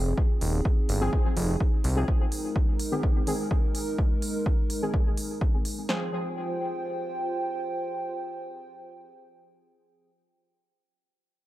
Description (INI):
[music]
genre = melodic techno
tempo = 126 BPM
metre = 4/4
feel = straight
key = F minor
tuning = A4 = 440 Hz
[part]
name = dark analog pad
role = sustained chords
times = 0.0-10.1 s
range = Ab3 to G5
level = -32 LUFS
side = right 1 dB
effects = chorus, sidechain pumping
[part]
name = fat analog bass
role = bass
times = 0.0-2.0 s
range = Eb1 to C2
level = -25 LUFS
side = equal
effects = sidechain pumping
[part]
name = deep house drum kit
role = drums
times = 0.2-6.0 s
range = kick drum, snare drum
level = -25 LUFS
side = equal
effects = none
[part]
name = electronic hi-hat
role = drums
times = 0.4-5.7 s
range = none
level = -37 LUFS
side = right 1 dB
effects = none
[part]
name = synth brass stab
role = stabs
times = 1.0-10.1 s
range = Eb3 to Ab4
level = -34 LUFS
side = left 1 dB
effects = chorus, sidechain pumping, tape echo
[sound]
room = moderate echo chamber reverb, RT60 2.0 s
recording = echo-heavy mix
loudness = -25 LUFS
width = side -15 dB against mid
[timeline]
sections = 0.0-5.9 A section; 5.9-9.7 B section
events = filter sweep on synth stab 0.0-5.9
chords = 0.0 Fm; 2.1 Ab; 5.9 Fm